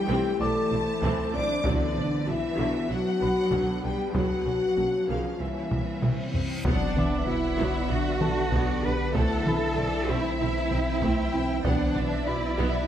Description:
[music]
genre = cinematic, hybrid orchestral and electronic film score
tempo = 96 BPM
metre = 4/4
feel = straight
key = B phrygian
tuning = A4 = 442 Hz
[part]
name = warm symphonic violin section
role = second line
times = 0.0-12.9 s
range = D5 to D6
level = -35 LUFS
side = left 3 dB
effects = none
[part]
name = dark French horn section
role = sustained chords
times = 0.0-12.9 s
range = B3 to D5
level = -30 LUFS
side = left 3 dB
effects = none
[part]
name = ethereal airy pad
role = sustained chords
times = 0.0-12.9 s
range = D3 to D5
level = -35 LUFS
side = equal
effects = ensemble chorus, built-in reverb
[part]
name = warm symphonic cello section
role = bass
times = 0.0-12.9 s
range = D3 to B4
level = -31 LUFS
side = right 2 dB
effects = none
[part]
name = rich symphonic viola section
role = accompaniment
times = 0.1-12.9 s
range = C#3 to F#4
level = -34 LUFS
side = right 1 dB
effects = none
[part]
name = harp-like synth pluck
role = arpeggios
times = 0.1-12.8 s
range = C3 to B4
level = -36 LUFS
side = left 1 dB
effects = chorus, tape echo
[part]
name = rich studio double bass section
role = bass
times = 0.1-12.7 s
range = B1 to C2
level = -33 LUFS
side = right 2 dB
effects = none
[part]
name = dark grand piano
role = texture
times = 0.4-12.9 s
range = A4 to D6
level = -39 LUFS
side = equal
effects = tape echo
[part]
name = taiko ensemble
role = drums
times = 1.0-12.2 s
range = none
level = -30 LUFS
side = equal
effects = none
[part]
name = reverse cymbal and impact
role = sound effects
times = 6.2-9.2 s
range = none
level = -36 LUFS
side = equal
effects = none
[part]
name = rich symphonic violin section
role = melody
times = 6.7-12.9 s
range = D5 to F#5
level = -38 LUFS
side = left 4 dB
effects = none
[part]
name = saturated sub bass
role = bass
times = 6.7-12.9 s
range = B1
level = -32 LUFS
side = equal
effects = none
[sound]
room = moderate scoring stage reverb, RT60 1.7 s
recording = none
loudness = -24 LUFS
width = side -10 dB against mid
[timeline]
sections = 0.0-6.7 A section; 6.7-12.9 A section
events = drum fill 5.7-6.7; reverse cymbal 6.2-6.7; impact 6.7-9.2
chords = 0.0 Am/B; 1.6 Bm; 4.2 F#/B; 5.4 C; 6.7 Bm; 9.2 Am/B; 11.7 Bm

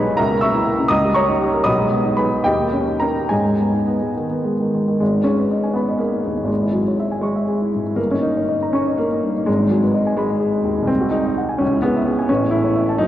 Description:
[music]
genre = classical, romantic character piece for solo piano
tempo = 68-90 BPM (dotted quarters)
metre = 6/8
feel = rubato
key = G# minor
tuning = A4 = 439 Hz
[part]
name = warm baby grand piano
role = solo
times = 0.0-13.1 s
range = G1 to E6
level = -16 LUFS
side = equal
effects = none
[sound]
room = wet church reverb, RT60 3.5 s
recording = worn, warbling old tape, cassette tape, warbly pitch drift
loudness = -16 LUFS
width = side -12 dB against mid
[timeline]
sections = 0.0-5.0 A section; 5.0-13.1 A section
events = none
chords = 0.2 A#dim/C#; 0.9 D#7/C#; 1.7 G#m/B; 2.5 D#7; 3.3 G#m; 6.5 C#m/G#; 8.0 D#7/G; 9.5 G#m; 10.9 G#7/B#; 11.6 C#m; 12.3 A

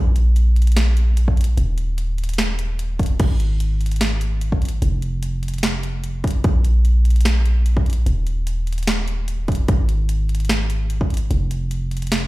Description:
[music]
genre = future bass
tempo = 148 BPM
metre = 4/4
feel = swing 53% on 16ths, half-time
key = unclear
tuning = A4 = 441 Hz
[part]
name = warm 808-style bass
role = bass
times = 0.0-12.3 s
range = Eb1 to Bb1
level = -18 LUFS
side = equal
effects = sidechain pumping
[part]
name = trap drum kit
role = drums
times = 0.2-12.2 s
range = crash cymbal, hi-hat, snare drum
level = -26 LUFS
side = right 1 dB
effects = none
[part]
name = electronic kick drum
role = drums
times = 1.3-11.1 s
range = none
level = -18 LUFS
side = equal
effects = overdrive
[sound]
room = little or no reverb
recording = played on a big sound system in a bare room, large studio reverb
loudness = -17 LUFS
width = side -19 dB against mid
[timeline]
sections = 0.0-12.3 A section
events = none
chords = none

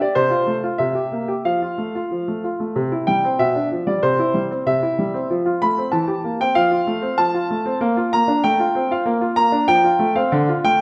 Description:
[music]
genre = classical-period piano sonatina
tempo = 94 BPM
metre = 2/4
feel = straight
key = C major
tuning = A4 = 440 Hz
[part]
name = clear concert grand piano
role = solo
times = 0.0-10.8 s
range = B2 to B5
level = -19 LUFS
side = equal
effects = none
[sound]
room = wet recital hall reverb, RT60 1.3 s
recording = none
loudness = -20 LUFS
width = mono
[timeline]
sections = 0.0-2.8 A section; 2.8-10.8 B section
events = none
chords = 0.2 F/C; 0.8 C7; 1.4 F; 2.8 C; 3.4 G7/B; 4.0 C; 5.3 F; 5.9 C7/E; 6.6 F; 7.8 Bb; 8.4 F/A; 9.1 Bb; 9.7 F

